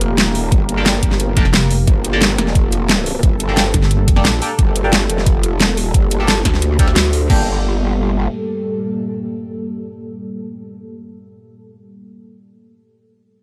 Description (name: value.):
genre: dark technical drum and bass.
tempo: 177 BPM.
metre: 4/4.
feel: straight.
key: G minor.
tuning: A4 = 440 Hz.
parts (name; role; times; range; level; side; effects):
deep dark ambient pad; sustained chords; 0.0-10.8 s; G3 to Bb4; -27 LUFS; equal; chorus, built-in reverb, sidechain pumping.
growl bass; bass; 0.0-8.3 s; F1 to D2; -20 LUFS; equal; chorus, sidechain pumping.
dubstep drum kit; drums; 0.0-7.4 s; crash cymbal, hi-hat, snare drum; -19 LUFS; equal; none.
electronic kick drum; drums; 0.5-7.4 s; none; -17 LUFS; equal; overdrive.
band-passed chord stab; stabs; 0.8-11.0 s; Bb3 to A4; -25 LUFS; equal; phaser, subtle chorus, delay.
pulsing pluck wobble bass; bass; 1.4-4.2 s; F1 to G1; -18 LUFS; equal; chorus.
room: digital ambience.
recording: none.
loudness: -16 LUFS.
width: mono.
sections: 0.0-7.3 A section; 7.3-10.0 B section.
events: drop 0.0-7.3.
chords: 0.0 Gmadd9.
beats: 0.18 | 0.52 0.86 1.20 1.54 | 1.88 2.21 2.55 2.89 | 3.23 3.57 3.91 4.25 | 4.59 4.93 5.26 5.60 | 5.94 6.28 6.62 6.96 | 7.30 7.64 7.98 8.32 | 8.65 8.99 9.33 9.67.